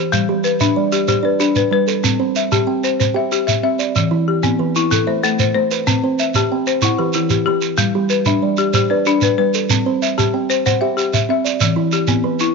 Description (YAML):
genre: southern african traditional, mbira-style interlocking cycle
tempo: 125 BPM (dotted quarters)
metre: 12/8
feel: straight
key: G major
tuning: A4 = 440 Hz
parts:
  - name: folk marimba with hard mallets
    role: arpeggios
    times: 0.0-12.5 s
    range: E3 to E5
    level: -17 LUFS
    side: left 10 dB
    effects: none
  - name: kalimba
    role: arpeggios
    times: 0.0-12.5 s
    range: E3 to A5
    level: -20 LUFS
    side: right 13 dB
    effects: none
  - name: shekere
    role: percussion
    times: 0.1-12.5 s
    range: none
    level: -19 LUFS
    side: right 6 dB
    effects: none
room: moderate echo chamber reverb, RT60 1.4 s, small room ambience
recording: 1960s-style stereo with parts hard left and right, nothing above 7.5 kHz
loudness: -14 LUFS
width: side -4 dB against mid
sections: 0.1-12.5 A section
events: none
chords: 0.1 G; 2.0 C; 4.0 Em; 4.9 Am; 5.9 C; 6.8 Em; 7.8 G; 9.7 C; 11.6 Em